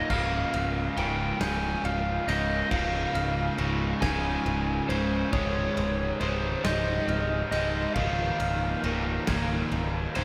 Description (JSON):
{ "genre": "post-rock", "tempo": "46 BPM (dotted quarters)", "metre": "6/8", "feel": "straight", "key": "Db lydian", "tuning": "A4 = 440 Hz", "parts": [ { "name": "overdriven slide guitar", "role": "melody", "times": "0.0-10.2 s", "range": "C5 to Ab5", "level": "-34 LUFS", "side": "equal", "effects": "delay" }, { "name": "warbly tape-like pad", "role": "sustained chords", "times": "0.0-10.2 s", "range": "C3 to Bb4", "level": "-42 LUFS", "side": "equal", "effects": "none" }, { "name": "glockenspiel with hard plastic mallets", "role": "arpeggios", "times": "0.0-10.2 s", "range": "Eb6 to Bb6", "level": "-39 LUFS", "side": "equal", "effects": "delay" }, { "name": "crunchy overdriven guitar", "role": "riff", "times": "0.0-10.2 s", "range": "Db2 to Ab3", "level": "-32 LUFS", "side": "equal", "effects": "lush chorus" }, { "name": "picked electric bass", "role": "bass", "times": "0.1-10.2 s", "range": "Db1", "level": "-34 LUFS", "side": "equal", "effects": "none" }, { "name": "big rock drum kit", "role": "drums", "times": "0.1-10.2 s", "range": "crash cymbal, kick drum, ride cymbal, snare drum", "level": "-37 LUFS", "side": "equal", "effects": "none" } ], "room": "wet huge ambient reverb, RT60 8.8 s", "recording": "dreamy mix soaked in reverb", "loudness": "-28 LUFS", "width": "mono", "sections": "0.0-10.2 A section", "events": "none", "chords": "0.1 Db6; 5.3 Abmaj7/Db; 8.0 Ebsus2/Db", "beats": "| 0.10 1.41 | 2.72 4.02 | 5.33 6.65 | 7.96 9.28" }